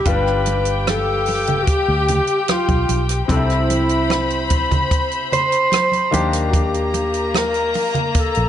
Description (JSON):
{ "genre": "lush 1970s-style soul", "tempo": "74 BPM", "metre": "4/4", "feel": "straight", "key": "unclear", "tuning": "A4 = 440 Hz", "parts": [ { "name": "mellow alto saxophone", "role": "melody", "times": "0.0-8.5 s", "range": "E4 to C5", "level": "-20 LUFS", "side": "equal", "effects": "tape echo" }, { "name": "rich studio string section", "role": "second line", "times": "0.0-8.5 s", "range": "Bb3 to B5", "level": "-23 LUFS", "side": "left 3 dB", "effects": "none" }, { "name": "bright grand piano", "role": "accompaniment", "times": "0.0-8.5 s", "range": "C3 to B4", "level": "-25 LUFS", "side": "left 4 dB", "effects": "none" }, { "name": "vintage muted fingered electric bass", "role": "bass", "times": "0.1-8.5 s", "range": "G1 to Eb2", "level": "-22 LUFS", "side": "equal", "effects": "none" }, { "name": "compact cocktail drum kit", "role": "drums", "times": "0.1-8.5 s", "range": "hi-hat, kick drum, rim click", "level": "-21 LUFS", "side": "right 1 dB", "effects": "none" }, { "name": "congas", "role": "percussion", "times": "0.1-8.1 s", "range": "none", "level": "-27 LUFS", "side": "right 4 dB", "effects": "none" } ], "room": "light reverb, small room reverb", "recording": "nothing above 10.7 kHz", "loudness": "-16 LUFS", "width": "side -10 dB against mid", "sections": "0.1-8.5 A section", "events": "none", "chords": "0.1 G7; 3.3 C6; 6.1 Ebmaj7" }